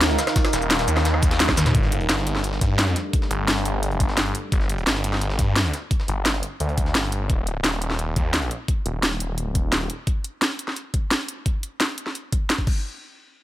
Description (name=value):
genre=dark technical drum and bass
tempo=173 BPM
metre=4/4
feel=straight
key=G minor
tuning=A4 = 441 Hz
part: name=deep dark ambient pad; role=sustained chords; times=0.0-4.5 s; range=G3 to F5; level=-29 LUFS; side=right 1 dB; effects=chorus, built-in reverb, sidechain pumping
part: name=snarling distorted saw bass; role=bass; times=0.0-9.9 s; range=Eb1 to G2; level=-24 LUFS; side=equal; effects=distortion
part: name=breakbeat sampler-style drum kit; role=drums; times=0.0-7.2 s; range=hi-hat, snare drum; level=-32 LUFS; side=equal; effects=none
part: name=drum and bass drum kit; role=drums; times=0.0-12.7 s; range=crash cymbal, hi-hat, rim click, shaker, snare drum, toms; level=-23 LUFS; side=equal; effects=overdrive
part: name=electronic kick drum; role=drums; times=0.4-12.7 s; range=none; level=-22 LUFS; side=equal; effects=overdrive
room=little or no reverb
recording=none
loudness=-20 LUFS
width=side -14 dB against mid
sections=0.0-1.7 A section; 1.7-12.8 B section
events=drop 0.0-1.7; drum fill 1.4-1.7; filter sweep on detuned saw bass 1.7-10.1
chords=0.0 Eb5; 1.7 G5; 7.3 N.C.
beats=0.01 | 0.36 0.71 1.05 1.40 | 1.75 2.09 2.44 2.79 | 3.13 3.48 3.83 4.17 | 4.52 4.87 5.21 5.56 | 5.91 6.25 6.60 6.95 | 7.30 7.64 7.99 8.34 | 8.68 9.03 9.38 9.72 | 10.07 10.42 10.76 11.11 | 11.46 11.80 12.15 12.50